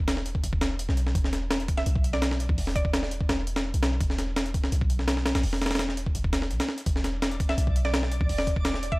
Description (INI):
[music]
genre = drum and bass, jungle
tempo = 168 BPM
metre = 4/4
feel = straight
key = unclear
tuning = A4 = 440 Hz
[part]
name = warm 808-style bass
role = bass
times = 0.0-9.0 s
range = E1 to B1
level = -28 LUFS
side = equal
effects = tube saturation
[part]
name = breakbeat sampler-style drum kit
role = drums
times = 0.1-9.0 s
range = hi-hat, kick drum, snare drum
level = -26 LUFS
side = equal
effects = small room ambience
[part]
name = mallet-like synth pluck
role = melody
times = 1.8-3.0, 7.5-9.0 s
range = D5 to E5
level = -33 LUFS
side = right 1 dB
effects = chorus, dub echo
[part]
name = twinkling granular texture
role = texture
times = 7.3-9.0 s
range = D5 to D6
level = -37 LUFS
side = right 2 dB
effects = built-in reverb
[sound]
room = little or no reverb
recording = dry, gritty hardware recording, vinyl crackle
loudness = -24 LUFS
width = side -23 dB against mid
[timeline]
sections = 0.0-9.0 A section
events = none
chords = 0.0 E7(no3)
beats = 0.08 0.43 0.79 | 1.15 1.51 1.86 2.22 | 2.58 2.94 3.29 3.65 | 4.01 4.36 4.72 5.08 | 5.43 5.79 6.15 6.51 | 6.86 7.22 7.58 7.93 | 8.29 8.65